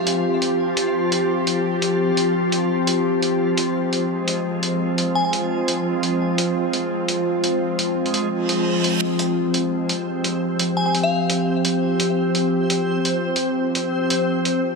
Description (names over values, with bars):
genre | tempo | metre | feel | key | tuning
half-time drum and bass | 171 BPM | 4/4 | swing 53% on 16ths, half-time | F minor | A4 = 440 Hz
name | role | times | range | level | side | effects
glassy synth bell | melody | 0.0-0.1, 5.2-5.3, 10.8-11.3 s | F5 to Ab5 | -26 LUFS | left 2 dB | chorus, vintage 12-bit sampler grit, ping-pong delay
bowed-like drone | sustained chords | 0.0-14.8 s | F3 to G4 | -20 LUFS | equal | built-in reverb
backwards swelling texture | texture | 0.0-14.8 s | F3 to C5 | -26 LUFS | left 1 dB | built-in reverb
electronic hi-hat | drums | 0.1-14.5 s | none | -24 LUFS | right 1 dB | none
reverse cymbal | sound effects | 8.4-9.0 s | none | -26 LUFS | right 5 dB | none
room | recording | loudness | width
wet lush hall reverb, RT60 2.0 s | none | -18 LUFS | side -3 dB against mid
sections
0.0-14.8 A section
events
reverse cymbal 8.4-9.0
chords
0.0 F5